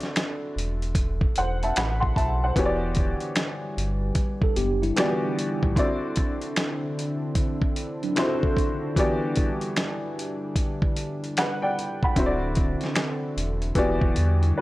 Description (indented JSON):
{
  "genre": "lo-fi hip hop",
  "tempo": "75 BPM",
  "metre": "4/4",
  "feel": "swing 66% on 16ths",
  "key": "E minor",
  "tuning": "A4 = 440 Hz",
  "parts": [
    { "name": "clear upright piano", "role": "accompaniment", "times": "0.0-14.6 s", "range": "D3 to C6", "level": "-27 LUFS", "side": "left 1 dB", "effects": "cassette tape, low-pass filter" },
    { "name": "dusty soul sampler-style drum kit", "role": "drums", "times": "0.0-14.6 s", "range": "finger snaps, hi-hat, kick drum, snare drum", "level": "-25 LUFS", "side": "equal", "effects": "none" },
    { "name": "sub bass with octave", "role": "bass", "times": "0.6-5.8, 12.2-14.5 s", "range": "D1 to E2", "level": "-26 LUFS", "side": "equal", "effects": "none" },
    { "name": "warm analog pad", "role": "sustained chords", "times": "2.6-14.6 s", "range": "D3 to E4", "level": "-32 LUFS", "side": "equal", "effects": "chorus, low-pass filter" },
    { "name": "mellow tine electric piano", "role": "second line", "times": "4.4-8.9 s", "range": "F#3 to A4", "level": "-30 LUFS", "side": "right 1 dB", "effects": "medium stereo tremolo, low-pass filter, tape echo" }
  ],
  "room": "little or no reverb",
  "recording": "dry, gritty hardware recording",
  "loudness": "-22 LUFS",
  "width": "side -18 dB against mid",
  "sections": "0.0-14.6 A section",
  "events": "none",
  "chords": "0.0 D9; 2.6 Em9; 5.8 D9; 9.0 Em9; 12.2 D9; 13.8 Em9"
}